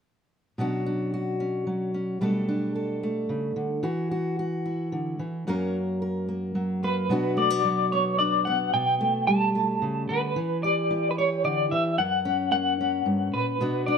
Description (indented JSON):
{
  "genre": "folk",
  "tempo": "111 BPM",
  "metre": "3/4",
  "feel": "straight",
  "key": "B minor",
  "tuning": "A4 = 444 Hz",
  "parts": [
    { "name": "fingerpicked steel-string acoustic guitar", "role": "accompaniment", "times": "0.6-14.0 s", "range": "F#2 to A#4", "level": "-26 LUFS", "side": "equal", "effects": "none" },
    { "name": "electric guitar through a small old amp", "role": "melody", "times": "6.8-14.0 s", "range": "B4 to A5", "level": "-24 LUFS", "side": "left 1 dB", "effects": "tremolo" }
  ],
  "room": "moderate large studio reverb, RT60 1.2 s",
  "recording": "close, detailed microphones",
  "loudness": "-24 LUFS",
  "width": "side -6 dB against mid",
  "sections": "0.6-7.1 A section; 7.1-14.0 B section",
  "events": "none",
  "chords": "0.6 Bmadd9; 2.2 Gadd9/B; 3.8 Esus2; 5.5 F#; 7.1 Bm; 8.7 Gadd9/B; 10.4 Em; 12.0 F#"
}